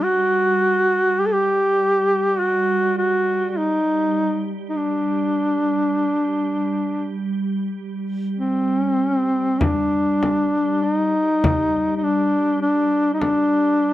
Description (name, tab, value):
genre	caucasian folk, Caucasian lament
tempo	48-52 BPM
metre	4/4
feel	rubato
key	unclear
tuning	A4 = 440 Hz
part	mellow duduk	melody	0.0-13.9 s	C4 to A4	-18 LUFS	equal	none
part	soft additive organ-like pad	drone	0.0-13.9 s	G3	-26 LUFS	right 1 dB	ensemble chorus, built-in reverb
part	frame drum	percussion	9.6-13.5 s	none	-22 LUFS	left 2 dB	none
room	light reverb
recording	close, detailed microphones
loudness	-18 LUFS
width	side -14 dB against mid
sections	0.0-13.9 A section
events	none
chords	none